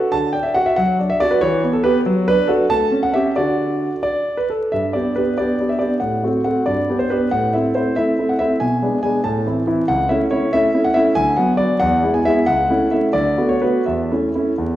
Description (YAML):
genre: classical-period piano sonatina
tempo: 93 BPM (dotted quarters)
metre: 6/8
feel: rubato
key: D major, G major from 4.7 s, A major from 9.9 s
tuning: A4 = 439 Hz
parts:
  - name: clear concert grand piano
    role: solo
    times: 0.0-14.8 s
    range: C#2 to A5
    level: -15 LUFS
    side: equal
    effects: none
room: wet recital hall reverb, RT60 1.5 s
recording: heard from further back in the room, vinyl crackle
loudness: -15 LUFS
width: side -13 dB against mid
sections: 0.0-4.7 A section; 4.7-14.8 B section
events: none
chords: 0.0 D; 0.8 D/F#; 1.4 Em; 2.0 D/F#; 2.7 A7; 3.4 D; 4.7 G; 6.0 F#dim/A; 6.7 G; 7.3 Am; 8.6 G#dim/B; 9.2 Am; 9.9 A/C#; 11.2 Bm/D; 11.8 E; 12.5 A/C#; 13.1 Bm7/D; 13.9 A/E